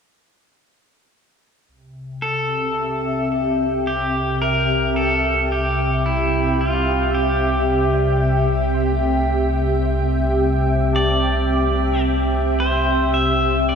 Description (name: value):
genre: ambient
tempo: 55 BPM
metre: 4/4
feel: straight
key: unclear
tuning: A4 = 442 Hz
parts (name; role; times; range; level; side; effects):
- soft additive organ-like pad; sustained chords; 2.0-13.8 s; C3 to G5; -20 LUFS; equal; ensemble chorus, built-in reverb, shimmer reverb
- warm sub bass; bass; 1.7-13.8 s; C2; -23 LUFS; equal; none
- pedal steel guitar; melody; 2.2-13.8 s; E4 to E5; -22 LUFS; equal; shimmer reverb, ping-pong delay
- overdriven tine electric piano; arpeggios; 5.9-13.8 s; G3 to E6; -36 LUFS; equal; none
room: wet lush hall reverb, RT60 3.1 s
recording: cassette tape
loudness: -17 LUFS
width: side -6 dB against mid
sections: 1.7-13.8 A section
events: none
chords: 1.7 C